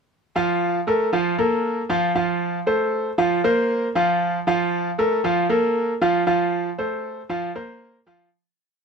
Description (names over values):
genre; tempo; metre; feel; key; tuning
latin; 117 BPM; 4/4; straight; unclear; A4 = 439 Hz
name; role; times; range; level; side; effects
bright concert grand piano; solo; 0.4-8.3 s; F3 to F5; -19 LUFS; right 1 dB; none
room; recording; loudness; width
light reverb; close, detailed microphones; -19 LUFS; side -5 dB against mid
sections
0.1-8.3 montuno (vamp)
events
fade-out 6.3-8.3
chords
0.1 Bb5; 2.2 F; 3.2 C7sus4; 4.2 Bb5; 6.3 F; 7.3 C7sus4